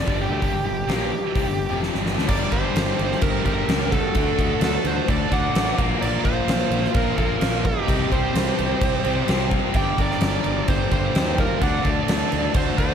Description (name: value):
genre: hard rock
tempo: 129 BPM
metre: 4/4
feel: straight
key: G minor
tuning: A4 = 439 Hz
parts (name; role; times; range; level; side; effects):
- high-gain lead guitar; melody; 0.0-12.9 s; G4 to G5; -26 LUFS; right 2 dB; distortion, analog delay
- overdriven electric guitar; riff; 0.0-12.9 s; F2 to D4; -27 LUFS; left 11 dB; none
- scooped high-gain guitar; riff; 0.0-12.9 s; F2 to D4; -30 LUFS; right 11 dB; distortion, slapback echo
- fuzz fingered electric bass; bass; 0.0-12.9 s; F1 to Eb2; -27 LUFS; equal; overdrive
- huge arena drum kit; drums; 0.1-12.9 s; crash cymbal, hi-hat, kick drum, snare drum; -23 LUFS; equal; none
- octave-fuzz lead guitar; second line; 2.3-12.9 s; Eb4 to D5; -31 LUFS; right 4 dB; distortion, analog delay
room: moderate concert hall reverb, RT60 2.2 s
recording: big arena sound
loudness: -19 LUFS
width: side -8 dB against mid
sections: 0.0-2.3 A section; 2.3-12.9 B section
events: drum fill 1.8-2.3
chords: 0.0 Gm; 4.2 D; 5.8 Bb5; 7.9 C5; 9.7 Gm; 11.6 D